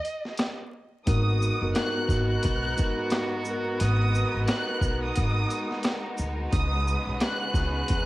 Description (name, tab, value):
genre	hip hop, boom-bap hip-hop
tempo	88 BPM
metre	4/4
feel	swing 57% on 16ths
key	G# minor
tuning	A4 = 440 Hz
part	warm studio violin section	melody	0.0-8.1 s	D#5 to F#6	-32 LUFS	right 1 dB	high-pass filter, low-pass filter, cassette tape, plate reverb
part	boom bap sampler-style drum kit	drums	0.0-8.1 s	hi-hat, kick drum, rim click, shaker, snare drum	-28 LUFS	equal	cassette tape
part	mellow tine electric piano	accompaniment	1.1-3.8 s	G#2 to A#4	-30 LUFS	equal	medium stereo tremolo, high-pass filter, low-pass filter, cassette tape, plate reverb
part	clear studio string section	sustained chords	1.1-8.1 s	C#3 to A#4	-34 LUFS	equal	high-pass filter, low-pass filter, cassette tape, plate reverb
part	warm horn section	stabs	1.1-8.1 s	B3 to B4	-34 LUFS	right 2 dB	high-pass filter, low-pass filter, cassette tape, tape echo, plate reverb
part	upright bass	bass	1.1-8.1 s	F#1 to D#2	-26 LUFS	equal	none
room	light reverb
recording	home recording on cassette, vinyl crackle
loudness	-24 LUFS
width	side -17 dB against mid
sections	0.0-1.1 A section; 1.1-8.1 B section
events	break 0.0-1.1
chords	0.0 N.C.; 1.1 G#m7; 6.5 C#9sus4